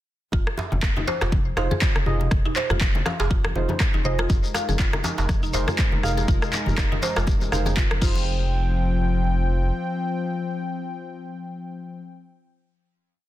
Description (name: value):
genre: afro house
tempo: 121 BPM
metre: 4/4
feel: swing 57% on 16ths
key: F minor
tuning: A4 = 440 Hz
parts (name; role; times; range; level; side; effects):
- mallet-like synth pluck; arpeggios; 0.3-8.5 s; Eb4 to F5; -30 LUFS; equal; wide subtle chorus, sidechain pumping, ping-pong delay
- round analog bass; bass; 0.3-9.7 s; F1; -25 LUFS; equal; tube saturation, sidechain pumping
- electronic kick drum; drums; 0.3-8.1 s; none; -22 LUFS; equal; studio reverb
- djembe; percussion; 0.3-8.1 s; none; -31 LUFS; right 2 dB; none
- afro-pop drum kit; drums; 0.5-8.1 s; crash cymbal, handclaps, rim click, toms; -28 LUFS; left 1 dB; studio reverb
- congas; percussion; 0.6-8.2 s; none; -32 LUFS; left 2 dB; none
- deep mellow chord stab; stabs; 1.6-12.0 s; Eb4 to F5; -32 LUFS; right 2 dB; chorus, cassette tape, sidechain pumping, ping-pong delay
- warm analog pad; sustained chords; 4.3-12.0 s; F3 to G5; -29 LUFS; left 2 dB; chorus, vintage 12-bit sampler grit, sidechain pumping
- shekere; percussion; 4.3-8.2 s; none; -34 LUFS; left 4 dB; none
room: digital ambience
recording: dense, heavily limited modern master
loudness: -20 LUFS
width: side -14 dB against mid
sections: 0.3-8.3 drop; 8.3-12.2 final hit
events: drop 0.3-8.3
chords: 0.3 Fm7; 4.3 Abadd9/F; 8.0 Fm7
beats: | 0.33 0.83 1.32 1.82 | 2.31 2.81 3.31 3.80 | 4.30 4.79 5.29 5.79 | 6.28 6.78 7.27 7.77 | 8.27 8.76 9.26 9.75 | 10.25 10.74 11.24 11.74